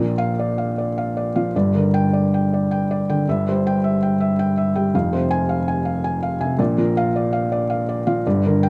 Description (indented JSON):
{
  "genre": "neoclassical minimalist piano",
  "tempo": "107 BPM",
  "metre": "3/4",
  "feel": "rubato",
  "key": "unclear",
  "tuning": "A4 = 440 Hz",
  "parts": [
    { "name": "felt-muted upright piano", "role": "solo", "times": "0.0-8.7 s", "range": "F1 to Ab5", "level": "-20 LUFS", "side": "equal", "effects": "none" }
  ],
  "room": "light reverb",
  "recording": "recorded outdoors, with no room sound",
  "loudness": "-20 LUFS",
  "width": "mono",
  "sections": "0.0-8.7 A section",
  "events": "none",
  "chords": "0.0 Bb; 1.5 Gm; 3.3 C/G; 4.9 Fm; 6.6 Bb"
}